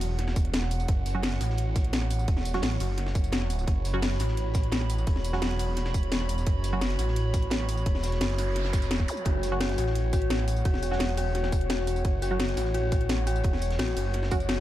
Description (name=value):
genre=dark technical drum and bass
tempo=172 BPM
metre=4/4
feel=straight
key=F# minor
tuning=A4 = 440 Hz
part: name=dark analog pad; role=sustained chords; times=0.0-14.6 s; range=F#4 to B5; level=-34 LUFS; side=equal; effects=wide subtle chorus, sidechain pumping
part: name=filtered dub chord stab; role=stabs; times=0.0-6.8, 9.5-14.4 s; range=F#3 to F#4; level=-35 LUFS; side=right 2 dB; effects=wide subtle chorus, ping-pong delay
part: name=snarling distorted saw bass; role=bass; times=0.0-14.6 s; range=E1 to A1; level=-28 LUFS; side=equal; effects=tube saturation, sidechain pumping
part: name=crunchy breakbeat drum kit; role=drums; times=0.0-14.6 s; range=hi-hat, snare drum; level=-46 LUFS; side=equal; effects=none
part: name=drum and bass drum kit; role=drums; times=0.0-14.6 s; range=hi-hat, snare drum, tambourine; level=-32 LUFS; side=left 1 dB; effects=overdrive, small room reverb
part: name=electronic kick drum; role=drums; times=0.4-14.4 s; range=none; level=-26 LUFS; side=equal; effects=overdrive, small room reverb
part: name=noise sweep and zap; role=sound effects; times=8.3-9.3 s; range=none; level=-39 LUFS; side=right 2 dB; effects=none
part: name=dark detuned synth bell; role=arpeggios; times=9.3-14.6 s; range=F#4 to C#5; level=-34 LUFS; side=left 6 dB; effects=chorus, sidechain pumping, ping-pong delay
room=light reverb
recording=dark, warm production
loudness=-25 LUFS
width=side -14 dB against mid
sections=0.0-14.6 A section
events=noise sweep 8.3-9.3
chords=0.0 F#m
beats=0.19 0.54 | 0.89 1.23 1.58 1.93 | 2.28 2.63 2.98 3.33 | 3.68 4.03 4.37 4.72 | 5.07 5.42 5.77 6.12 | 6.47 6.82 7.16 7.51 | 7.86 8.21 8.56 8.91 | 9.26 9.61 9.96 10.30 | 10.65 11.00 11.35 11.70 | 12.05 12.40 12.74 13.09 | 13.44 13.79 14.14 14.49